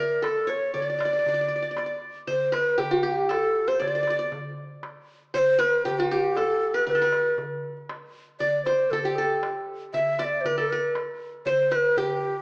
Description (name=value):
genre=Arabic maqam ensemble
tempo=118 BPM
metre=3/4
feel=straight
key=G maqam rast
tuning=A4 = 440 Hz
part: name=breathy ney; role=melody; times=0.0-12.4 s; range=F#4-49c to E5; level=-23 LUFS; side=equal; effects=none
part: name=qanun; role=second line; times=0.0-12.4 s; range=F#4-50c to E5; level=-28 LUFS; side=equal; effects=none
part: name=darbuka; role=percussion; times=0.1-12.3 s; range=none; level=-38 LUFS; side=equal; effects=none
room=moderate recital hall reverb, RT60 1.6 s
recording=recorded in a church or concert hall, small speaker sound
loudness=-22 LUFS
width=side -31 dB against mid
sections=0.0-2.3 A section; 2.3-12.4 B section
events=none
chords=none